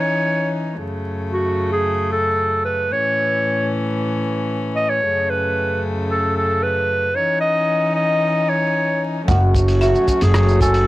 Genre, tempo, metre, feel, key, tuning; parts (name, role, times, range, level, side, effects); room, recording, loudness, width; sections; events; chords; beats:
folktronica; 113 BPM; 4/4; straight; F# dorian; A4 = 440 Hz
clear clarinet; melody; 0.0-10.9 s; F#4 to D#5; -19 LUFS; equal; tape echo
rich string quartet; sustained chords; 0.0-10.9 s; F#2 to D#4; -22 LUFS; left 1 dB
marimba with hard mallets; second line; 9.3-10.8 s; E5 to G#5; -25 LUFS; right 3 dB; tape echo
cimbalom; arpeggios; 9.3-10.9 s; F#2 to F#4; -20 LUFS; equal; vintage 12-bit sampler grit
upright bass; bass; 9.3-10.9 s; F#1; -15 LUFS; equal
kick drum; drums; 9.3-10.7 s; -18 LUFS; equal
lo-fi sampler-style drum kit; drums; 9.3-10.9 s; hi-hat, rim click, shaker; -27 LUFS; right 1 dB; overdrive
studio ambience; vinyl crackle; -16 LUFS; side -16 dB against mid
0.0-9.3 A section; 9.3-10.9 B section
0.0 C#madd9; 0.8 F#m; 2.9 A; 5.0 F#m; 7.2 C#madd9; 9.3 F#m
0.26 | 0.79 1.32 1.85 2.38 | 2.91 3.44 3.97 4.50 | 5.04 5.57 6.10 6.63 | 7.16 7.69 8.22 8.75 | 9.28 9.81 10.35